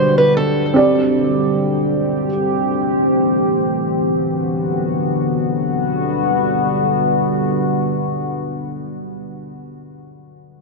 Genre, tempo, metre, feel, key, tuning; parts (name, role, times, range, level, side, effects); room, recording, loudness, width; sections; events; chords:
hip hop; free time; G major; A4 = 439 Hz
picked acoustic archtop guitar; melody; 0.0-0.7 s; A4 to C5; -17 LUFS; equal; low-pass filter, ping-pong delay
felt-muted upright piano; accompaniment; 0.0-2.3 s; G3 to D5; -18 LUFS; right 2 dB; low-pass filter
deep dark ambient pad; sustained chords; 0.0-8.8 s; B2 to G4; -17 LUFS; left 1 dB; chorus, built-in reverb
light reverb; -15 LUFS; side -2 dB against mid
0.0-5.3 A section; 5.3-8.4 B section
0.0 Gmaj7; 0.8 Csus2; 2.3 Am7; 3.8 Bm; 5.3 Gmaj7